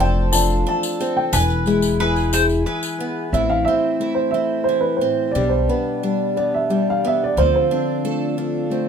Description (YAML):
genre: acoustic folk duo or small band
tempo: 90 BPM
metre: 3/4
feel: straight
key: A minor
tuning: A4 = 439 Hz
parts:
  - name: dark upright piano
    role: melody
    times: 0.0-8.2 s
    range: B4 to A5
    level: -20 LUFS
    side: right 2 dB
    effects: none
  - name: mandolin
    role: second line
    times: 0.0-3.3 s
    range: B4 to C5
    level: -25 LUFS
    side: left 1 dB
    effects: none
  - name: fingerpicked steel-string acoustic guitar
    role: accompaniment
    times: 0.0-8.9 s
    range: A2 to C5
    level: -22 LUFS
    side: left 3 dB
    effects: none
  - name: picked twelve-string acoustic guitar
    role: arpeggios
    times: 0.0-8.9 s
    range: E3 to A4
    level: -26 LUFS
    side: right 4 dB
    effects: none
  - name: upright bass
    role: bass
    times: 0.0-7.7 s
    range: E1 to D2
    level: -21 LUFS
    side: equal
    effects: none
  - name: tambourine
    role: percussion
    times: 0.3-3.0 s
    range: none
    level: -26 LUFS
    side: left 5 dB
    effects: none
room: light reverb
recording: minimal, uncompressed stereo recording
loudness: -17 LUFS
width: side -7 dB against mid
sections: 0.0-3.3 A section; 3.3-8.9 B section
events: upright piano solo 3.3-8.9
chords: 0.0 F6; 1.3 E; 3.3 Am; 5.4 G/B; 7.4 Dm7